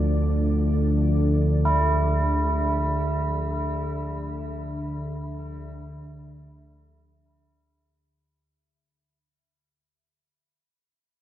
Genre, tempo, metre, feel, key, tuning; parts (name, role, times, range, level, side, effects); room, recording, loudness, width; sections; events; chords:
dark ambient drone; free time; D minor; A4 = 440 Hz
deep dark ambient pad; sustained chords; 0.0-8.4 s; F3 to D5; -34 LUFS; left 2 dB; chorus, built-in reverb, shimmer reverb
deep rumbling drone; drone; 0.0-8.5 s; D2 to D3; -24 LUFS; equal; built-in reverb
tubular bells; arpeggios; 1.7-9.2 s; E4; -28 LUFS; right 2 dB; diffuse ambient delay, shimmer reverb
wet huge ambient reverb, RT60 8.1 s; -22 LUFS; side -12 dB against mid
0.0-8.4 A section
fade-out on ambient pad 0.0-8.4; fade-out 1.7-8.4
0.0 Dm